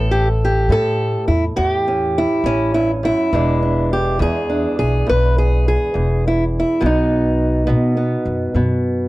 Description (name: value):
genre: acoustic country blues, solo or duo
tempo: 69 BPM (dotted quarters)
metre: 12/8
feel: straight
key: E mixolydian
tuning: A4 = 440 Hz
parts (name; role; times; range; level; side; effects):
- fingerpicked steel-string acoustic guitar; melody; 0.0-9.1 s; E2 to B4; -17 LUFS; equal; none
- upright bass; bass; 0.0-9.1 s; E1 to B2; -19 LUFS; equal; none
room: little or no reverb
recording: dry, close 1970s-style studio recording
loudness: -15 LUFS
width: side -18 dB against mid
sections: 0.0-9.1 A section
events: none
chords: 0.0 A7; 3.3 E7; 6.8 B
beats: 0.70 1.57 2.45 | 3.32 4.20 5.07 5.95 | 6.82 7.69 8.56